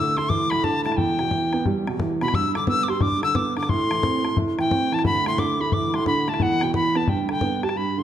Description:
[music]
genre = celtic folk, Celtic hornpipe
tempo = 177 BPM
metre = 4/4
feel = swing 64% on 8ths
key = G major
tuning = A4 = 440 Hz
[part]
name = bright wooden whistle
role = melody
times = 0.0-8.0 s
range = F#5 to E6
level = -24 LUFS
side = left 2 dB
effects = none
[part]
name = warm upright piano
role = accompaniment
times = 0.0-8.0 s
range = D2 to A4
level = -23 LUFS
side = right 3 dB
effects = none
[part]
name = bodhran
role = percussion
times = 0.2-7.8 s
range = none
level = -27 LUFS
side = left 3 dB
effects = none
[sound]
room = wet recital hall reverb, RT60 1.6 s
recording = none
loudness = -20 LUFS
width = side -10 dB against mid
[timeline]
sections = 0.0-7.8 A section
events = none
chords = 0.0 Dsus2; 1.0 Em; 2.3 G; 3.7 Am; 5.0 Dsus2; 6.4 E5; 7.1 G

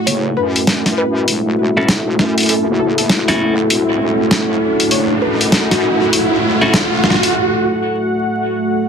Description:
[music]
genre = glitch hop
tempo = 99 BPM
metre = 4/4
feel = swing 62% on 16ths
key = F# minor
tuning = A4 = 437 Hz
[part]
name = dark analog pad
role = sustained chords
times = 0.0-8.9 s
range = A3 to F#5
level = -18 LUFS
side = right 1 dB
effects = chorus, vintage 12-bit sampler grit
[part]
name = swell and riser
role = sound effects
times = 0.0-7.3 s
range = none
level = -20 LUFS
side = right 1 dB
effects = none
[part]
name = warbly tape-like pad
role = texture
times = 0.0-7.3 s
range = E4 to F#5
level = -22 LUFS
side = left 2 dB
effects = chorus, built-in reverb
[part]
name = woody wave-folded pluck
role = melody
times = 0.1-6.3 s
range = F#4 to C#5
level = -23 LUFS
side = left 1 dB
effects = analog chorus, tape echo
[part]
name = wobble bass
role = bass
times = 0.1-7.3 s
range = E1 to F#2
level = -22 LUFS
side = equal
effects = chorus, high-pass filter
[part]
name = boom bap sampler-style drum kit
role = drums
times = 0.1-7.3 s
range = hi-hat, snare drum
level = -14 LUFS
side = left 1 dB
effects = none
[part]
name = clean electric guitar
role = stabs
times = 1.8-6.8 s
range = C#4 to A4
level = -19 LUFS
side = equal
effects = low-pass filter, tape echo
[sound]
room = moderate studio reverb, RT60 0.6 s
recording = dense, heavily limited modern master, vinyl crackle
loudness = -12 LUFS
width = side -6 dB against mid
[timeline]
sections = 0.1-8.9 A section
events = build-up 0.1-8.9; riser 0.1-7.3; break 7.3-8.9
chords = 0.1 F#m7

